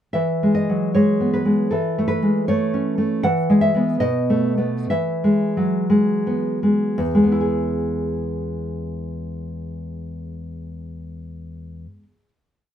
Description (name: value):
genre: romantic piece for solo classical guitar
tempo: 55-79 BPM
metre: 2/4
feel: rubato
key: E major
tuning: A4 = 440 Hz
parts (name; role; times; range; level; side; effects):
- nylon-string guitar; solo; 0.1-12.3 s; E2 to F#5; -19 LUFS; equal; none
room: light reverb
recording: close, detailed microphones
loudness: -18 LUFS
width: side -10 dB against mid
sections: 0.1-7.0 A section; 7.0-11.0 final chord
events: slowing down 2.5-7.0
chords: 0.1 E; 1.7 A/E; 3.2 E; 4.0 B7; 4.9 E